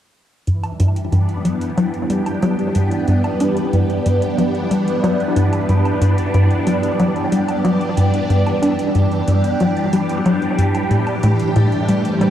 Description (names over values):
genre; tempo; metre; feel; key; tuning
ambient, sequencer-driven space music; 92 BPM; 4/4; straight; unclear; A4 = 440 Hz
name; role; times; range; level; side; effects
phased string machine; sustained chords; 0.5-12.3 s; E3 to G4; -19 LUFS; equal; ensemble chorus, phaser
tight sequencer bass; riff; 0.5-12.3 s; G2 to D4; -17 LUFS; equal; lush chorus, tape echo
electronic hi-hat and woodblock; percussion; 0.5-12.3 s; none; -35 LUFS; right 1 dB; tape echo
room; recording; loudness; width
wet cathedral reverb, RT60 6.0 s; dreamy mix soaked in reverb; -15 LUFS; side -10 dB against mid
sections
0.5-12.3 A section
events
none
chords
0.5 G6; 10.9 Am7